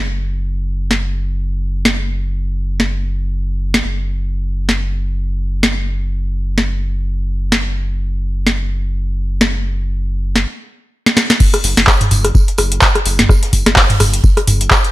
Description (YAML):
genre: acid house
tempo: 127 BPM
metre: 4/4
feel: swing 56% on 16ths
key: unclear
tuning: A4 = 440 Hz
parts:
  - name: saturated sub bass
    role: bass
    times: 0.0-14.7 s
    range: F#1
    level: -19 LUFS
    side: equal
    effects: sidechain pumping
  - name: booming analog drum machine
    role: drums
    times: 0.9-14.9 s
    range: crash cymbal, handclaps, hi-hat, rim click, snare drum, toms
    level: -13 LUFS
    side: equal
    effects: none
  - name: electronic kick drum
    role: drums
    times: 11.4-14.8 s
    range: none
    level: -12 LUFS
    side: equal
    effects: none
  - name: open jazz drum kit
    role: drums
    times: 11.4-14.8 s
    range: hi-hat, snare drum, tambourine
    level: -27 LUFS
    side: right 3 dB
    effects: sidechain pumping on hats, high-pass filter on hats, high-pass filter on snare, sidechain pumping on perc, high-pass filter on perc, high-pass filter on room
room: small room ambience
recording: none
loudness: -13 LUFS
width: side -17 dB against mid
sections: 0.0-11.4 A section; 11.4-14.9 B section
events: drum fill 11.0-11.4; drop 11.4-14.9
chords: none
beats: | 0.07 0.54 1.01 1.48 | 1.96 2.43 2.90 3.37 | 3.84 4.32 4.79 5.26 | 5.73 6.21 6.68 7.15 | 7.62 8.10 8.57 9.04 | 9.51 9.99 10.46 10.93 | 11.40 11.88 12.35 12.82 | 13.29 13.77 14.24 14.71